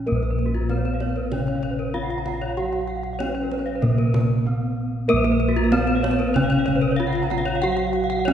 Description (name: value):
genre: Balinese gamelan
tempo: 96 BPM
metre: 4/4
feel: straight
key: Bb pelog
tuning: A4 = 441 Hz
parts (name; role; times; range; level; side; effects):
- gamelan-type bronze metallophone; melody; 0.0-8.3 s; Bb3 to Gb4; -25 LUFS; equal; none
- gamelan-type bronze metallophone; accompaniment; 0.0-8.3 s; Db3 to Bb3; -30 LUFS; right 1 dB; none
- gamelan-type bossed gongs; bass; 0.0-8.3 s; Bb1 to Bb4; -25 LUFS; equal; none
- gamelan-type bronze metallophone; arpeggios; 0.1-8.3 s; F4 to Gb5; -28 LUFS; left 3 dB; none
- gamelan-type bronze metallophone; arpeggios; 0.2-8.3 s; Gb4 to Bb5; -30 LUFS; right 4 dB; none
- kendang; percussion; 0.2-8.3 s; none; -30 LUFS; right 1 dB; none
room: wet concert hall reverb, RT60 2.4 s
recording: heard from further back in the room, nothing above 10.5 kHz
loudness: -20 LUFS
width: side -9 dB against mid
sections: 0.1-8.3 A section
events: none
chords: none